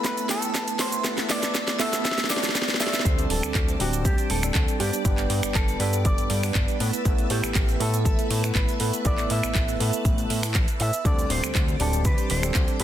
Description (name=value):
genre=nu-disco, nu disco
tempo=120 BPM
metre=4/4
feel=straight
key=A dorian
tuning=A4 = 440 Hz
part: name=electric guitar with an envelope filter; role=melody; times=0.0-12.8 s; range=F#4 to E5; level=-31 LUFS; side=equal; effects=dub echo
part: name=tine electric piano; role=accompaniment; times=0.0-12.8 s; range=G3 to B4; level=-30 LUFS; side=right 1 dB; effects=medium stereo tremolo, sidechain pumping
part: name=string machine, full ensemble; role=sustained chords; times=0.0-12.8 s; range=G4 to F#6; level=-35 LUFS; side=equal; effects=phaser, ensemble chorus, sidechain pumping
part: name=house drum kit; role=drums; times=0.0-12.8 s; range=cabasa, finger snaps, handclaps, hi-hat, snare drum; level=-27 LUFS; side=right 1 dB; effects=soft clipping on snare
part: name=fat analog bass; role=bass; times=0.1-12.8 s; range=D1 to A2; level=-28 LUFS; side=equal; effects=sidechain pumping, high-pass filter
part: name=electronic kick drum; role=drums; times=0.1-12.7 s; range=none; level=-24 LUFS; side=equal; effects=high-pass filter on kick
part: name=cabasa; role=percussion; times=0.1-3.0 s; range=none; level=-40 LUFS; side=right 3 dB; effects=none
room=light reverb, digital ambience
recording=dense, heavily limited modern master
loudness=-21 LUFS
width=side -11 dB against mid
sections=0.0-3.1 A section; 3.1-12.8 B section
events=build-up 0.0-3.1; drum fill 0.0-3.1; drop 3.1-12.8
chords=0.0 Asus2; 3.1 D7sus4; 4.8 G; 6.8 Asus2; 11.1 D7sus4